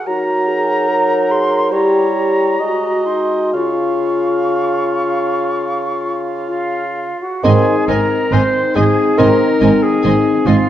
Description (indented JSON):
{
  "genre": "classical, slow romantic movement for symphony orchestra",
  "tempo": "60-74 BPM",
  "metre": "4/4",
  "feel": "rubato",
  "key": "Db major, Ab major from 7.4 s",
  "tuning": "A4 = 440 Hz",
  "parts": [
    { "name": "concert flute", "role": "second line", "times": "0.0-10.7 s", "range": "F5 to Db6", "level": "-22 LUFS", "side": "equal", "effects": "none" },
    { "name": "mellow French horn section", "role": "sustained chords", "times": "0.0-10.7 s", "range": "C4 to Bb4", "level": "-18 LUFS", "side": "left 3 dB", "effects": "none" },
    { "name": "clear clarinet", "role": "second line", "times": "0.1-10.7 s", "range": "Eb4 to C5", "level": "-20 LUFS", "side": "left 1 dB", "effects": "none" },
    { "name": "mellow cor anglais", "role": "second line", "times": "0.1-9.5 s", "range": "Bb4 to F5", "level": "-24 LUFS", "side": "right 2 dB", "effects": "none" },
    { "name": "mellow bassoon", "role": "accompaniment", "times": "0.1-9.5 s", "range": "Db3 to Ab3", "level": "-20 LUFS", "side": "right 2 dB", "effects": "none" },
    { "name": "warm symphonic violin section", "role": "melody", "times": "7.4-10.5 s", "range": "Ab5", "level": "-29 LUFS", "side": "left 2 dB", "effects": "none" },
    { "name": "warm symphonic violin section", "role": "second line", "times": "7.4-10.5 s", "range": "Eb5", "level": "-29 LUFS", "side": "left 2 dB", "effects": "none" },
    { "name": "dark studio viola section", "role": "accompaniment", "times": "7.4-10.5 s", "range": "C4", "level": "-23 LUFS", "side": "right 3 dB", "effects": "none" },
    { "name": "warm symphonic cello section", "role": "bass", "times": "7.4-10.5 s", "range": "Ab2", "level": "-20 LUFS", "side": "right 3 dB", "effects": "none" },
    { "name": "warm symphonic double bass section", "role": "bass", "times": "7.4-10.5 s", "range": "Ab1", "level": "-19 LUFS", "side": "right 4 dB", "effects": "none" }
  ],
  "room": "wet scoring stage reverb, RT60 1.8 s",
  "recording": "worn, warbling old tape, cassette tape, warbly pitch drift",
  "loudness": "-13 LUFS",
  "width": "side -11 dB against mid",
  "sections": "0.0-7.4 A section; 7.4-10.7 B section",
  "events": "none",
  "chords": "0.1 Ebm/Gb; 1.7 Gdim7; 2.6 Ab7; 3.5 Db; 7.4 Ab",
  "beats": "| 0.08 0.90 1.73 2.61 | 3.55 4.53 5.52 6.50 | 7.44 8.32 9.18 10.03"
}